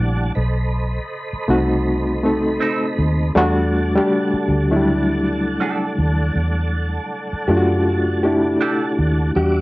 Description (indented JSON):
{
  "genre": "R&B, neo-soul",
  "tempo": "80 BPM",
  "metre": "4/4",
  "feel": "swing 59% on 16ths",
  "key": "E minor",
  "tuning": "A4 = 436 Hz",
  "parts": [
    { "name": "reed electric piano", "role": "accompaniment", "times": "0.0-9.6 s", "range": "F#3 to A4", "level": "-18 LUFS", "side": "left 1 dB", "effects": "fast tremolo" },
    { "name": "tonewheel organ", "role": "sustained chords", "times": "0.0-9.6 s", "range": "G3 to D6", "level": "-27 LUFS", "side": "right 2 dB", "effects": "slow rotary speaker, chorus vibrato" },
    { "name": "vintage muted fingered electric bass", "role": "bass", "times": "0.0-9.6 s", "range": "A#1 to F#2", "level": "-20 LUFS", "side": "equal", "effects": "none" },
    { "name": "electric guitar through a small old amp", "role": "second line", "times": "2.6-8.8 s", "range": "C4 to A4", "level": "-23 LUFS", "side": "right 4 dB", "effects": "wah" }
  ],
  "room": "moderate studio reverb, RT60 0.6 s",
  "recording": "home recording on cassette, nothing above 7.6 kHz",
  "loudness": "-16 LUFS",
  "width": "side -20 dB against mid",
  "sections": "0.0-9.4 A section",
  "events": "none",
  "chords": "0.4 B7b9; 3.4 Em11",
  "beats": "| 0.35 1.10 1.85 2.60 | 3.35 4.10 4.85 5.60 | 6.35 7.10 7.85 8.60 | 9.35"
}